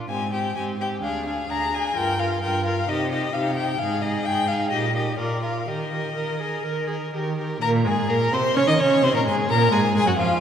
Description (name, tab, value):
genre	quick classical-period movement for string quartet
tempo	128 BPM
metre	4/4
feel	straight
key	Eb major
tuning	A4 = 438 Hz
part	rich violin	second line	0.0-10.4 s	F4 to Eb5	-26 LUFS	equal	none
part	warm viola	accompaniment	0.0-10.4 s	F3 to Bb4	-27 LUFS	right 1 dB	none
part	rich cello	bass	0.0-10.4 s	D2 to Eb3	-26 LUFS	right 2 dB	none
part	warm violin	melody	0.1-10.4 s	D5 to Eb6	-26 LUFS	left 4 dB	none
room	wet church reverb, RT60 2.6 s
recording	recorded in a church or concert hall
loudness	-20 LUFS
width	side -8 dB against mid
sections	0.0-7.6 A section; 7.6-10.4 B section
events	none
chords	0.1 Abmaj7; 1.0 Ddim; 2.0 Gm7; 2.9 Cm; 3.8 Fm9/Ab; 4.7 Eb/Bb; 5.2 Bb; 5.7 Eb; 7.6 Abadd9; 8.6 Ab; 9.5 Fmadd11